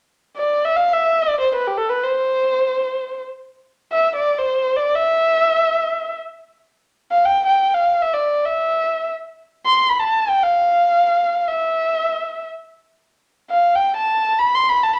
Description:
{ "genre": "turkish", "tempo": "free time", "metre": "none", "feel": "none", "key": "unclear", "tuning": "A4 = 440 Hz", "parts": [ { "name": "dark kamancheh", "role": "melody", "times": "0.4-15.0 s", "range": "G4 to C6", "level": "-18 LUFS", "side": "equal", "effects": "none" } ], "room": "moderate large studio reverb, RT60 0.9 s", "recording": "none", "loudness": "-18 LUFS", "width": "mono", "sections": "0.0-15.0 A section", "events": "none", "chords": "none" }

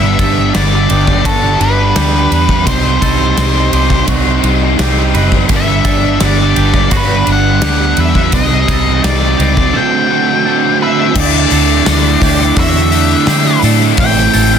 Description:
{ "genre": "rock, shoegaze and dream pop", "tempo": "85 BPM", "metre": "4/4", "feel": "straight", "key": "G major", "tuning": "A4 = 439 Hz", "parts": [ { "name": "octave-fuzz lead guitar", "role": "melody", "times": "0.0-14.6 s", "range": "A4 to G5", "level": "-16 LUFS", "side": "left 2 dB", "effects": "distortion, tape echo" }, { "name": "twangy electric guitar", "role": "arpeggios", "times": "0.0-14.6 s", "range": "F#4 to B4", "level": "-25 LUFS", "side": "right 8 dB", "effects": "wide subtle chorus, tape echo" }, { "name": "biting overdriven guitar", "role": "riff", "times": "0.0-14.6 s", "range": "G2 to F#4", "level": "-17 LUFS", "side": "left 13 dB", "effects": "analog chorus" }, { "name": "overdriven semi-hollow guitar", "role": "riff", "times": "0.0-14.6 s", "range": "G2 to F#4", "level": "-16 LUFS", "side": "right 12 dB", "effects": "reverse reverb" }, { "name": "vintage muted fingered electric bass", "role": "bass", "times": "0.0-14.6 s", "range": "F#1 to D3", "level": "-14 LUFS", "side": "left 1 dB", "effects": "none" }, { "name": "gated 80s drum kit", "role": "drums", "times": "0.2-14.5 s", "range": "crash cymbal, hi-hat, kick drum, ride cymbal, snare drum", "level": "-16 LUFS", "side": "left 1 dB", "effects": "soft clipping on snare" }, { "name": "tambourine", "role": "percussion", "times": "11.2-14.6 s", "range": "none", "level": "-29 LUFS", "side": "right 6 dB", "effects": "none" } ], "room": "small room ambience", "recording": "dense, heavily limited modern master", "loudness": "-9 LUFS", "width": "side -8 dB against mid", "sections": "0.0-11.2 A section; 11.2-14.6 B section", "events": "none", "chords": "0.0 Gmaj7; 2.7 Cm; 5.5 Gmaj7; 8.3 Cm; 9.7 D7sus4; 11.2 Dsus2; 14.0 Am7" }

